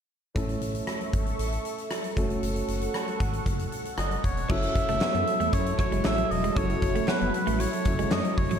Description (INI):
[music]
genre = 1980s-style pop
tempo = 116 BPM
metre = 4/4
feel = straight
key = unclear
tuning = A4 = 437 Hz
[part]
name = warm concert grand piano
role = accompaniment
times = 0.3-8.6 s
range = A3 to A4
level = -34 LUFS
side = equal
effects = slapback echo
[part]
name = lush unison pad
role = sustained chords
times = 0.8-8.6 s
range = F#3 to C#6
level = -34 LUFS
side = right 2 dB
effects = chorus, phaser
[part]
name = smooth synth bass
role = bass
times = 0.4-8.6 s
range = E1 to F#2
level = -31 LUFS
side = equal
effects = none
[part]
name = big rock drum kit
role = drums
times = 0.4-8.6 s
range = crash cymbal, hi-hat, kick drum, rim click, snare drum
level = -29 LUFS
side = equal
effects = none
[part]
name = warm oboe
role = melody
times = 4.0-8.6 s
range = B4 to E5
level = -29 LUFS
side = left 1 dB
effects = ping-pong delay, slapback echo
[part]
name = clean electric guitar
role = riff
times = 4.5-8.6 s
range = F#3 to B3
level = -33 LUFS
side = right 6 dB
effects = wide subtle chorus, slapback echo
[part]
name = group handclap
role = percussion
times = 5.0-8.2 s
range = none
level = -49 LUFS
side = right 5 dB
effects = none
[sound]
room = wet recital hall reverb, RT60 1.5 s, small room ambience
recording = big arena sound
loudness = -24 LUFS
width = side -8 dB against mid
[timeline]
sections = 0.4-4.5 A section; 4.5-8.6 B section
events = none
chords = 0.4 A; 2.2 F#m; 4.5 F#m7